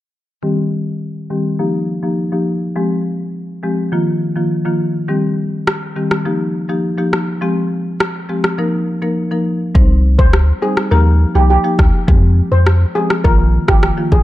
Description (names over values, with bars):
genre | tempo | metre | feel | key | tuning
dancehall | 103 BPM | 4/4 | straight | C minor | A4 = 440 Hz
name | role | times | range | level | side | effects
marimba with medium mallets | accompaniment | 0.4-14.2 s | Eb3 to C5 | -17 LUFS | left 1 dB | low-pass filter
afro-pop drum kit | drums | 5.7-14.2 s | kick drum, rim click | -14 LUFS | equal | none
punchy sub bass | bass | 9.8-14.2 s | Ab1 to F2 | -12 LUFS | equal | none
steel pan | melody | 10.2-14.2 s | G4 to C5 | -19 LUFS | equal | none
room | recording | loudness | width
small room ambience | dark, warm production | -13 LUFS | side -15 dB against mid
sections
0.4-9.8 A section; 9.8-14.2 B section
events
filter sweep on marimba 0.4-9.8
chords
0.4 Cm; 1.6 Ebadd9; 2.8 Fmadd9; 3.9 Bbsus4; 5.1 Cm; 6.3 Ebadd9; 7.4 Fmadd9; 8.6 Bbsus4; 9.8 Cm; 10.9 Ebadd9; 12.1 Fmadd9; 13.2 Bbsus4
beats
| 0.43 1.01 1.60 2.18 | 2.76 3.34 3.93 4.51 | 5.09 5.67 6.26 6.84 | 7.42 8.00 8.59 9.17 | 9.75 10.33 10.92 11.50 | 12.08 12.66 13.25 13.83